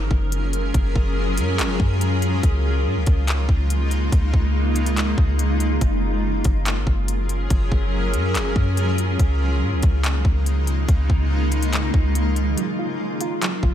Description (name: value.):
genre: hip hop, atmospheric cloud-rap.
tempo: 142 BPM.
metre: 4/4.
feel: half-time.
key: Db major.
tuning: A4 = 440 Hz.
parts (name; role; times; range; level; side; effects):
granular cloud pad; sustained chords; 0.0-13.7 s; Db3 to Bb4; -24 LUFS; left 1 dB; built-in reverb, sidechain pumping.
clean 808-style bass; bass; 0.0-13.7 s; Gb1 to Ab2; -21 LUFS; equal; none.
trap drum kit; drums; 0.1-13.7 s; handclaps, hi-hat, kick drum; -21 LUFS; equal; none.
soft round pluck; arpeggios; 12.6-13.7 s; Gb3 to F4; -28 LUFS; right 7 dB; chorus, low-pass filter, tape echo.
room: little or no reverb.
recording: none.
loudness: -18 LUFS.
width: side -10 dB against mid.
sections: 0.0-13.7 A section.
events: break 12.6-13.4.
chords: 0.0 Gbmaj7; 2.4 Db69; 5.8 Gbmaj7; 9.2 Db69; 12.6 Gbmaj7.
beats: 0.32 | 0.74 1.17 1.59 2.01 | 2.43 2.86 3.28 3.70 | 4.12 4.55 4.97 5.39 | 5.81 6.24 6.66 7.08 | 7.50 7.93 8.35 8.77 | 9.20 9.62 10.04 10.46 | 10.88 11.31 11.73 12.15 | 12.57 13.00 13.42.